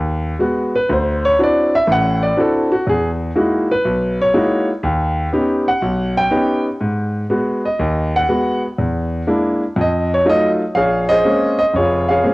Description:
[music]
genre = solo jazz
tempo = 122 BPM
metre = 4/4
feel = swing 69% on 8ths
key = unclear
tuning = A4 = 441 Hz
[part]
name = warm concert grand piano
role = solo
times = 0.0-12.3 s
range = F1 to G5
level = -14 LUFS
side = equal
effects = none
[sound]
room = light reverb, small room ambience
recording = home recording on cassette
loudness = -14 LUFS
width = side -21 dB against mid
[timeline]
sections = 0.0-10.8 A section; 10.8-12.3 B section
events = grand piano solo 0.0-10.8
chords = 0.0 Abm7; 0.9 D9; 2.9 Emaj9#11; 4.8 Eb7alt; 6.8 Abm7; 8.8 E7#11; 9.8 F7b9; 10.8 Bbm9

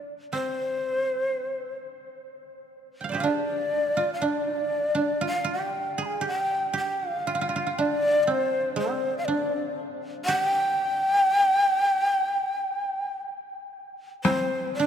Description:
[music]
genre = japanese traditional, Japanese chamber music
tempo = 60 BPM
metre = 2/4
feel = uneven beats, rubato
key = G in sen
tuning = A4 = 440 Hz
[part]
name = breathy shakuhachi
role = melody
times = 0.0-14.9 s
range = C5 to C6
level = -25 LUFS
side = left 1 dB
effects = none
[part]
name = koto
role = second line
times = 0.0-14.9 s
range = C4 to G5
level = -29 LUFS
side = right 3 dB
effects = none
[part]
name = taiko ensemble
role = percussion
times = 14.2-14.5 s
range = none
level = -27 LUFS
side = left 3 dB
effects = none
[sound]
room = moderate cathedral reverb, RT60 6.0 s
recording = none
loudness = -23 LUFS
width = side -8 dB against mid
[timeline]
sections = 0.0-14.2 A section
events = none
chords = none

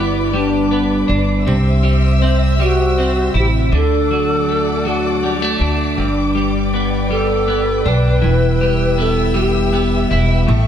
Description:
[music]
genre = six-eight pop ballad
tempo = 53 BPM (dotted quarters)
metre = 6/8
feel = straight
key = G major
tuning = A4 = 440 Hz
[part]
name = mellow alto flute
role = melody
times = 0.0-10.2 s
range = D4 to B4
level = -20 LUFS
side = equal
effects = tape echo
[part]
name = twelve-string electric guitar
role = accompaniment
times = 0.0-10.7 s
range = G2 to E4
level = -18 LUFS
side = equal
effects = double-tracked left and right
[part]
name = dark studio string section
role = sustained chords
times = 0.0-10.7 s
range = A4 to E6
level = -24 LUFS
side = left 3 dB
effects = none
[part]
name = upright bass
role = bass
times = 0.0-10.7 s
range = E1 to D2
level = -18 LUFS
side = equal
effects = none
[sound]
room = light reverb, small room ambience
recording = none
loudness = -13 LUFS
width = side -9 dB against mid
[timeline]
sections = 0.0-10.7 A section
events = none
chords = 0.0 G; 1.5 C; 3.7 D; 6.0 G; 8.2 Em

